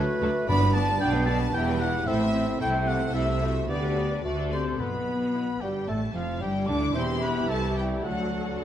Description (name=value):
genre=quick classical-period movement for symphony orchestra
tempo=112 BPM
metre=2/4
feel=rubato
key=G major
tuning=A4 = 436 Hz
part: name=rich studio violin section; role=melody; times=0.0-8.6 s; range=G4 to D6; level=-38 LUFS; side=left 4 dB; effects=none
part: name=dark clarinet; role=second line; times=0.0-8.6 s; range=F3 to A4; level=-35 LUFS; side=left 2 dB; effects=none
part: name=mellow hollow silver concert flute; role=second line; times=0.0-8.6 s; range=B4 to D6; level=-34 LUFS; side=left 1 dB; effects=none
part: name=mellow oboe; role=second line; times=0.0-8.6 s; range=F4 to B5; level=-34 LUFS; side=right 2 dB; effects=none
part: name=rich studio violin section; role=second line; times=0.0-8.6 s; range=D4 to B5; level=-39 LUFS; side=left 1 dB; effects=none
part: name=mellow bassoon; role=accompaniment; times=0.0-8.6 s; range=D3 to D4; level=-35 LUFS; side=right 2 dB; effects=none
part: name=warm studio viola section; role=accompaniment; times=0.0-8.6 s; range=E3 to B4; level=-35 LUFS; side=right 1 dB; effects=none
part: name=mellow French horn section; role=sustained chords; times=0.0-8.6 s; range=F3 to G4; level=-32 LUFS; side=left 3 dB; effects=none
part: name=rich studio cello section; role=bass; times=0.0-8.6 s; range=C2 to D3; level=-31 LUFS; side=right 1 dB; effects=none
part: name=rich studio double bass section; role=bass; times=0.0-8.6 s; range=E1 to D2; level=-31 LUFS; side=right 2 dB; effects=none
part: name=timpani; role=percussion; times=0.5-1.0, 4.8-5.6 s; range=G2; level=-31 LUFS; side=equal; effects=none
room=moderate scoring stage reverb, RT60 1.8 s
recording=none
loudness=-24 LUFS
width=side -10 dB against mid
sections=0.0-4.8 A section; 4.8-8.6 B section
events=none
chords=0.5 G; 1.0 G/B; 1.5 Em; 2.1 Am; 2.6 Am/C; 3.7 G/D; 4.3 D; 4.8 G/B; 5.9 G5; 7.0 C/E; 7.5 C; 8.0 D